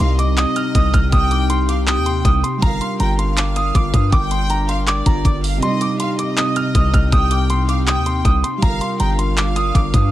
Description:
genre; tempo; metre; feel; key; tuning
hip hop, trap; 160 BPM; 4/4; half-time; C minor; A4 = 438 Hz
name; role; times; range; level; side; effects
dark baby grand piano; melody; 0.0-10.1 s; Bb5 to F6; -22 LUFS; right 1 dB; low-pass filter
warm studio violin section; second line; 0.0-10.1 s; D5 to G5; -27 LUFS; left 2 dB; tape echo
felt-muted upright piano; accompaniment; 0.0-10.1 s; C3 to Bb4; -26 LUFS; right 3 dB; low-pass filter
warbly tape-like pad; sustained chords; 0.0-10.1 s; C3 to Bb4; -25 LUFS; left 2 dB; chorus, built-in reverb
hard-hitting 808-style bass; bass; 0.0-10.1 s; G1 to G2; -18 LUFS; equal; none
trap drum kit; drums; 0.0-10.0 s; handclaps, hi-hat, kick drum; -18 LUFS; equal; vintage 12-bit sampler grit
room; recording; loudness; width
small room ambience; none; -15 LUFS; side -14 dB against mid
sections
0.0-10.1 A section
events
kick muted 5.6-6.4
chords
0.0 Cm; 2.6 Gm7; 5.6 Cm; 8.6 Gm7

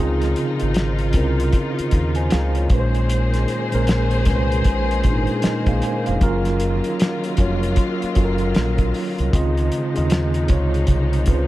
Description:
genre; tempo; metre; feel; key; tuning
R&B, neo-soul; 77 BPM; 4/4; swing 61% on 16ths; Db major; A4 = 441 Hz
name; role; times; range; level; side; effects
mellow tine electric piano; accompaniment; 0.0-11.5 s; Bb2 to Ab5; -22 LUFS; right 2 dB; medium stereo tremolo
dark studio string section; sustained chords; 0.0-11.5 s; Eb3 to C5; -27 LUFS; left 4 dB; none
fingered electric bass; bass; 0.0-11.5 s; F1 to Eb2; -21 LUFS; equal; none
cloth-damped thuddy drum kit; drums; 0.2-11.5 s; hi-hat, kick drum, snare drum; -20 LUFS; equal; none
room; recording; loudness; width
studio reverb; none; -17 LUFS; side -16 dB against mid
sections
0.0-11.5 A section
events
none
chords
0.0 Dbmaj9; 2.7 Bbm9; 6.2 Gbmaj7; 9.3 Dbmaj9

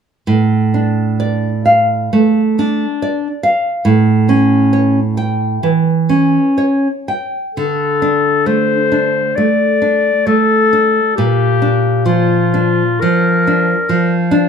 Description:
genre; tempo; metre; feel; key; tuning
romantic duo for clarinet and classical guitar; 66 BPM; 4/4; uneven beats, rubato; D minor; A4 = 438 Hz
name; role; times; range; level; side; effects
nylon-string guitar; accompaniment; 0.3-14.5 s; A2 to G5; -13 LUFS; right 1 dB; none
warm clarinet; melody; 7.5-14.3 s; F4 to D5; -14 LUFS; left 4 dB; none
room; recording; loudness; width
light reverb; band playing live in one room; -11 LUFS; side -7 dB against mid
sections
0.3-7.6 A section; 7.6-14.5 B section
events
none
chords
0.3 Dm/A; 3.8 A7; 7.6 D5; 11.2 Bb

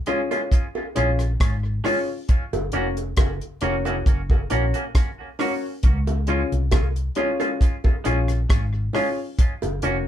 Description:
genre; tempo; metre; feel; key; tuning
roots reggae; 68 BPM; 4/4; straight; Db major; A4 = 440 Hz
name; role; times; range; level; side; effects
semi-hollow electric guitar; accompaniment; 0.1-10.0 s; Ab3 to Gb4; -28 LUFS; right 2 dB; tape echo
dark upright piano; stabs; 0.1-10.1 s; Db4 to Db5; -26 LUFS; left 2 dB; none
damped 70s drum kit; drums; 0.1-10.0 s; hi-hat, kick drum, rim click; -20 LUFS; equal; none
bongos; percussion; 0.3-9.8 s; none; -32 LUFS; right 2 dB; tape echo
vintage muted fingered electric bass; bass; 1.0-10.1 s; F1 to Db2; -24 LUFS; equal; none
room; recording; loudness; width
moderate small room ambience, RT60 0.5 s; band playing live in one room; -20 LUFS; side -10 dB against mid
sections
0.0-10.1 A section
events
none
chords
0.0 Db; 2.3 Gb; 5.8 Db; 9.4 Gb

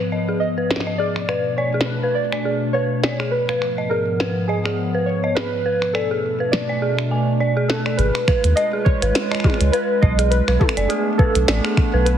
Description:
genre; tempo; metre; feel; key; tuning
IDM; 103 BPM; 4/4; swing 56% on 16ths; unclear; A4 = 440 Hz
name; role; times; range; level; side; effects
warbly lo-fi synth keys; melody; 0.0-12.2 s; Ab4 to Eb5; -23 LUFS; right 1 dB; chorus, phaser, vintage 12-bit sampler grit, ping-pong delay
warbly tape-like pad; sustained chords; 0.0-12.2 s; Ab2 to Cb5; -24 LUFS; equal; chorus, built-in reverb
dark detuned synth bell; arpeggios; 0.1-12.1 s; Ab4 to Ab5; -24 LUFS; equal; chorus, low-pass filter, ping-pong delay
glitchy drum kit; drums; 0.7-12.2 s; finger snaps, hi-hat, snare drum, toms; -24 LUFS; equal; low-pass filter on snare, low-pass filter on hats, low-pass filter on toms
warm sub bass; bass; 8.0-12.2 s; F#1 to Eb2; -18 LUFS; equal; none
electronic kick drum; drums; 8.3-11.9 s; none; -17 LUFS; equal; none
room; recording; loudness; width
moderate echo chamber reverb, RT60 2.1 s; heavily compressed radio sound, multiband compression; -17 LUFS; side -9 dB against mid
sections
0.0-8.0 A section; 8.0-12.2 B section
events
filter sweep on ambient pad 0.0-8.0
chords
0.0 Abm6; 1.0 Bm7; 3.3 Abm6; 5.7 Bm7; 8.0 Abm6; 10.3 Bm7

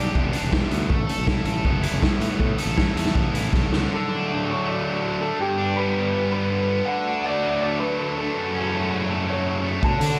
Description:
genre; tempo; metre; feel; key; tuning
indie rock; 161 BPM; 4/4; straight; unclear; A4 = 440 Hz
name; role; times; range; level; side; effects
electric guitar through a small old amp; melody; 0.0-0.6, 3.9-10.2 s; G4 to A5; -29 LUFS; equal; slapback echo
distorted electric guitar; riff; 0.0-10.2 s; F#2 to A4; -29 LUFS; equal; overdrive, slapback echo
fuzz fingered electric bass; bass; 0.0-3.9, 9.8-10.2 s; E1 to D3; -28 LUFS; equal; overdrive
raw garage drum kit; drums; 0.2-3.8, 9.8-10.1 s; hi-hat, kick drum, snare drum; -25 LUFS; equal; none
crunchy overdriven guitar; riff; 3.9-10.2 s; F#2 to G4; -28 LUFS; equal; ensemble chorus
room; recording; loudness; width
moderate lush hall reverb, RT60 2.0 s, small room ambience; big arena sound; -23 LUFS; mono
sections
0.0-3.9 A section; 3.9-10.2 B section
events
drum fill 3.5-3.9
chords
0.0 Em7; 0.9 Asus2; 3.9 D; 5.4 G; 6.9 D; 8.4 F#m

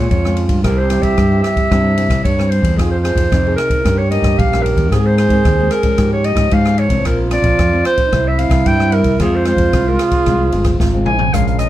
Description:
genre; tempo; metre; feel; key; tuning
samba and choro; 112 BPM; 4/4; straight; F minor; A4 = 440 Hz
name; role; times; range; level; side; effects
warm clarinet; melody; 0.0-11.7 s; Ab4 to Ab5; -18 LUFS; equal; none
breathy trombone; second line; 0.0-11.7 s; Db4 to Ab4; -20 LUFS; right 4 dB; none
nylon-string guitar; accompaniment; 0.0-11.7 s; G2 to Ab4; -21 LUFS; left 3 dB; none
modern bright fingered electric bass; bass; 0.0-11.7 s; G1 to Ab2; -17 LUFS; equal; none
open jazz drum kit; drums; 0.1-11.7 s; hi-hat, kick drum, ride cymbal, rim click, snare drum, toms; -18 LUFS; equal; none
room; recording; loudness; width
light reverb; dark, warm production; -12 LUFS; side -13 dB against mid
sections
0.0-11.3 A section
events
drum fill 10.8-11.3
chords
0.0 Bbm7; 0.6 C; 2.8 Fm7; 3.9 Eb7/G; 4.9 Ab; 6.0 Db/Ab; 7.1 Bbadd9; 8.1 C; 9.2 Fm

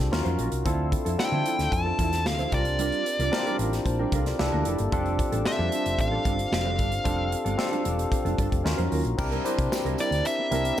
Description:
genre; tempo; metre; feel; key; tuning
polished 1980s jazz-funk pop; 113 BPM; 4/4; straight; unclear; A4 = 439 Hz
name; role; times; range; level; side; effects
barky tine electric piano; accompaniment; 0.0-10.8 s; Bb3 to A5; -29 LUFS; left 2 dB; overdrive, analog chorus
mellow electric guitar; riff; 0.0-10.8 s; E3 to C5; -33 LUFS; right 6 dB; ensemble chorus
hollow-body short-scale fingered electric bass; bass; 0.0-10.7 s; E1 to D3; -28 LUFS; equal; none
modern studio drum kit; drums; 0.0-10.8 s; crash cymbal, hi-hat, kick drum, snare drum; -30 LUFS; equal; gated reverb
nasal lead guitar with a parked wah; melody; 1.2-10.8 s; D5 to A5; -29 LUFS; equal; overdrive
tambourine; percussion; 9.2-10.8 s; none; -42 LUFS; left 6 dB; none
room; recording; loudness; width
light reverb, small room ambience; none; -23 LUFS; side -11 dB against mid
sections
0.0-9.2 A section; 9.2-10.8 B section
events
none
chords
0.1 Ebm9; 0.7 Dm9; 2.5 C9sus4; 4.4 C13; 4.9 F69; 8.7 Ebm9; 9.2 C7

